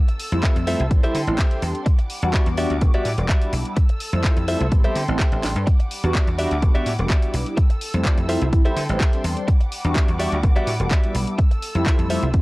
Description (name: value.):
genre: filtered disco house.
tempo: 126 BPM.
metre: 4/4.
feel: straight.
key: E minor.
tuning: A4 = 438 Hz.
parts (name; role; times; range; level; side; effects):
muted studio violin section; sustained chords; 0.0-12.4 s; G3 to E6; -33 LUFS; right 1 dB; sidechain pumping.
direct-recorded clean electric guitar; riff; 0.1-12.3 s; F4 to E5; -26 LUFS; equal; sidechain pumping.
house drum kit; drums; 0.1-12.4 s; handclaps, hi-hat, snare drum; -30 LUFS; equal; overdrive, sidechain pumping on hats.
mellow synth brass; accompaniment; 0.3-12.4 s; G3 to F#4; -27 LUFS; equal; chorus, phaser, sidechain pumping.
dry thumbed slap bass; bass; 0.3-12.4 s; E1 to D3; -23 LUFS; equal; sidechain pumping.
electronic kick drum; drums; 0.4-12.4 s; none; -18 LUFS; equal; overdrive.
room: little or no reverb.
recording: dry, gritty hardware recording, cassette tape.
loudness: -18 LUFS.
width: side -21 dB against mid.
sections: 0.0-12.4 A section.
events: drum fill 5.4.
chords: 0.0 Fmaj7; 0.9 Am7; 1.9 Em9; 3.8 Fmaj7; 4.7 Am7; 5.7 Em9; 7.6 Fmaj7; 8.5 Am7; 9.5 Em9; 11.4 Fmaj7.